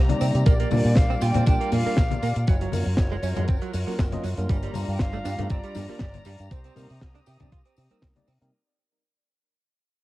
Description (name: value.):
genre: nu-disco, nu disco.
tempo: 119 BPM.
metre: 4/4.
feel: swing 54% on 16ths.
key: unclear.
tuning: A4 = 440 Hz.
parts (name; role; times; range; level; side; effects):
warm chamber string section; sustained chords; 0.0-8.5 s; G3 to Eb6; -37 LUFS; equal; vintage 12-bit sampler grit, sidechain pumping.
fingered electric bass with an envelope filter; bass; 0.0-8.5 s; Gb1 to C3; -26 LUFS; equal; sidechain pumping.
tine electric piano; accompaniment; 0.1-8.5 s; Gb3 to Bb5; -31 LUFS; equal; sidechain pumping.
tight funk drum kit; drums; 0.1-8.5 s; hi-hat, snare drum; -32 LUFS; left 1 dB; cassette tape.
congas and tambourine; percussion; 0.1-8.5 s; none; -33 LUFS; left 7 dB; none.
direct-recorded clean electric guitar; riff; 0.2-8.3 s; Gb3 to G4; -34 LUFS; right 9 dB; wide subtle chorus.
bright silver concert flute; melody; 0.5-7.2 s; C5 to G5; -32 LUFS; equal; cassette tape, analog delay.
electronic kick drum; drums; 0.5-8.1 s; none; -21 LUFS; equal; cassette tape.
room: studio reverb.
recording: home recording on cassette.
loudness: -21 LUFS.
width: side -17 dB against mid.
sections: 0.0-8.5 A section.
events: drop 0.0-8.5; fade-out 0.5-8.5.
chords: 0.5 Bb6; 2.5 Gbmaj7; 4.5 Gm7; 6.5 Cm7.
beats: | 0.46 0.97 1.47 1.98 | 2.48 2.98 3.49 3.99 | 4.50 5.00 5.50 6.01 | 6.51 7.02 7.52 8.03.